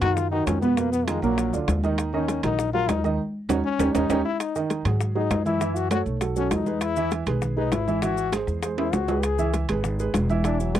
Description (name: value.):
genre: Afro-Cuban jazz.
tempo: 199 BPM.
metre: 4/4.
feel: straight.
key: Eb minor, G# minor from 4.4 s.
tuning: A4 = 441 Hz.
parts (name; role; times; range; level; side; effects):
bright trombone; second line; 0.0-10.8 s; Gb3 to G#4; -26 LUFS; left 8 dB; none.
dark baby grand piano; accompaniment; 0.0-10.8 s; Bb2 to E5; -26 LUFS; right 6 dB; none.
upright bass; bass; 0.0-10.8 s; E1 to G#2; -28 LUFS; equal; none.
congas; percussion; 0.0-10.8 s; none; -30 LUFS; left 1 dB; none.
maracas; percussion; 0.0-10.8 s; none; -42 LUFS; left 14 dB; none.
timbales; percussion; 0.0-10.8 s; none; -31 LUFS; right 7 dB; none.
bongos; percussion; 0.2-10.8 s; none; -31 LUFS; left 7 dB; none.
room: light reverb.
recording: dry, close 1970s-style studio recording.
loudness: -22 LUFS.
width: side -11 dB against mid.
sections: 0.0-4.4 A section; 4.4-10.8 A section.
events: trombone solo 0.0-10.8; drum fill 3.2-4.4, 8.8-9.2; band accent 3.2-4.4.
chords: 0.0 B; 0.8 Abm13; 1.4 Bb; 2.0 Ebm7; 3.8 Eb7; 4.4 G#5; 5.6 F#m7; 6.2 B6; 6.8 E; 8.0 G#7alt; 9.2 C#m7.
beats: 0.17 0.47 | 0.78 1.08 1.38 1.68 | 1.98 2.29 2.59 2.89 | 3.19 3.50 3.80 4.10 | 4.40 4.70 5.00 5.31 | 5.61 5.91 6.21 6.52 | 6.82 7.12 7.42 7.72 | 8.03 8.33 8.63 8.93 | 9.24 9.54 9.84 10.14 | 10.45 10.75.